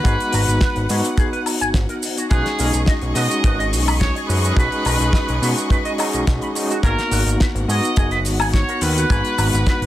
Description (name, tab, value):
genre	nu-disco, nu disco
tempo	106 BPM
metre	4/4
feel	straight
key	G# minor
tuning	A4 = 440 Hz
part	bright trumpet section	melody	0.0-9.9 s	G#4 to D#5	-25 LUFS	equal	digital delay
part	overdriven tine electric piano	accompaniment	0.0-9.9 s	G#3 to F#4	-24 LUFS	equal	medium tremolo, sidechain pumping
part	bright studio violin section	sustained chords	0.0-9.9 s	G#4 to C#6	-30 LUFS	equal	sidechain pumping
part	electric guitar with an envelope filter	riff	0.0-9.7 s	F#4 to B5	-27 LUFS	right 2 dB	wide subtle chorus
part	fat analog bass	bass	0.0-9.9 s	F#1 to B2	-21 LUFS	equal	none
part	kick drum	drums	0.0-9.8 s	none	-18 LUFS	equal	studio ambience
part	damped 70s drum kit	drums	0.1-9.9 s	hi-hat, shaker, snare drum, woodblock	-24 LUFS	left 2 dB	studio ambience
room	small room ambience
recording	none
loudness	-16 LUFS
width	side -14 dB against mid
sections	0.0-9.9 A section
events	none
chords	0.0 G#m7; 2.3 B69; 6.8 G#m9